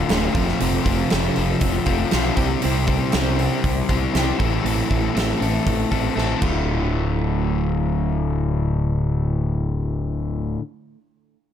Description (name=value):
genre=quiet-loud alternative rock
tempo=119 BPM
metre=4/4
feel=straight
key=D minor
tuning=A4 = 440 Hz
part: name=clean electric guitar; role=arpeggios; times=0.0-10.6 s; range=D2 to C5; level=-26 LUFS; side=right 6 dB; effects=lush chorus, tape echo
part: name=crunchy overdriven guitar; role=riff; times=0.0-10.6 s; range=D2 to C5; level=-23 LUFS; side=left 7 dB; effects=none
part: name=growling fingered electric bass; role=bass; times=0.1-10.6 s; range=D1 to C2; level=-24 LUFS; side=right 1 dB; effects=overdrive
part: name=huge arena drum kit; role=drums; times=0.1-6.5 s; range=crash cymbal, hi-hat, kick drum, snare drum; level=-24 LUFS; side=right 1 dB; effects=none
room=light reverb, small room ambience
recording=none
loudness=-19 LUFS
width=side -9 dB against mid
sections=0.0-6.7 A section; 6.7-10.7 B section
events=drum fill 6.2-6.7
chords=0.4 F; 2.4 C; 4.4 Am; 6.4 Dm